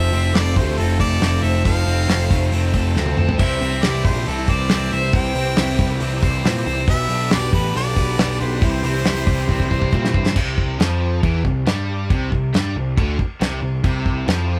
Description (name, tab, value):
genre	classic rock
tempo	138 BPM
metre	4/4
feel	straight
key	C major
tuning	A4 = 440 Hz
part	clear harmonica	melody	0.0-10.1 s	A4 to G5	-28 LUFS	equal	none
part	bluesy overdriven lead guitar	second line	0.0-10.1 s	E4 to C5	-33 LUFS	equal	distortion
part	picked steel-string acoustic guitar	accompaniment	0.0-10.4 s	C3 to C5	-34 LUFS	equal	none
part	tonewheel organ	sustained chords	0.0-10.3, 13.8-14.6 s	D4 to C5	-38 LUFS	equal	none
part	crunchy overdriven guitar	riff	0.0-14.6 s	C3 to C5	-29 LUFS	equal	none
part	distorted electric guitar	riff	0.0-14.6 s	C3 to C5	-31 LUFS	equal	none
part	fuzz picked electric bass	bass	0.0-14.6 s	F1 to Bb2	-23 LUFS	equal	overdrive
part	damped 70s drum kit	drums	0.1-14.4 s	crash cymbal, hi-hat, kick drum, snare drum, toms	-23 LUFS	equal	none
room	light reverb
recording	band playing live in one room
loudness	-19 LUFS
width	mono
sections	0.0-10.4 A section; 10.4-14.6 B section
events	drum fill 3.0-3.4, 9.5-10.4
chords	0.0 F; 3.4 C; 6.9 G; 8.6 C